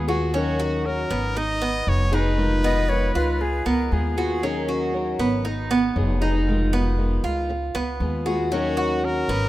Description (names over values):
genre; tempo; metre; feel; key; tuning
latin; 117 BPM; 4/4; straight; Eb minor; A4 = 439 Hz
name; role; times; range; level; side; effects
brilliant trumpet; melody; 0.0-3.7, 8.5-9.5 s; Gb4 to Eb5; -29 LUFS; equal; none
picked steel-string acoustic guitar; accompaniment; 0.0-9.5 s; Cb3 to Bb4; -27 LUFS; left 3 dB; none
Cuban tres; arpeggios; 0.0-9.5 s; Cb4 to Gb4; -25 LUFS; right 3 dB; none
upright bass; bass; 0.0-9.5 s; F1 to Eb2; -25 LUFS; equal; none
breathy bright jazz flute; second line; 2.6-4.9 s; Ab4 to Eb5; -28 LUFS; left 3 dB; none
room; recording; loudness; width
light reverb, studio reverb; rough home demo mix; -20 LUFS; side -15 dB against mid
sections
0.0-9.5 A section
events
none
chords
0.3 Ebm7; 1.4 Abm7; 2.4 Fm7b5; 3.4 Db7; 4.4 Ebm7; 5.5 Abm7; 6.5 Fm7b5; 7.5 Db7; 8.5 Ebm7